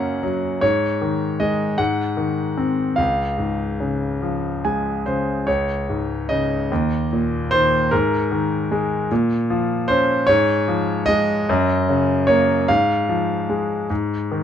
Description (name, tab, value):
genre	classical, lyrical solo piano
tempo	50 BPM (dotted quarters)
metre	6/8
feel	rubato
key	Db major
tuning	A4 = 440 Hz
part	bright concert grand piano	solo	0.0-14.4 s	Db2 to Ab5	-18 LUFS	equal	none
room	light reverb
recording	dark, warm production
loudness	-18 LUFS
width	side -9 dB against mid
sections	0.0-5.5 A section; 5.5-14.4 B section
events	grand piano fill 4.2-5.5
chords	0.0 Gb; 0.6 Absus4; 1.8 Ab; 3.0 Db; 5.5 Db5; 6.7 Eb5; 7.9 Absus2; 9.1 Bbm; 10.3 Db/Ab; 11.5 Gb; 12.7 Fm/Ab; 13.9 Ab5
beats	| 0.62 1.79 | 2.98 4.22 | 5.47 6.71 | 7.92 9.10 | 10.28 11.48 | 12.69 13.90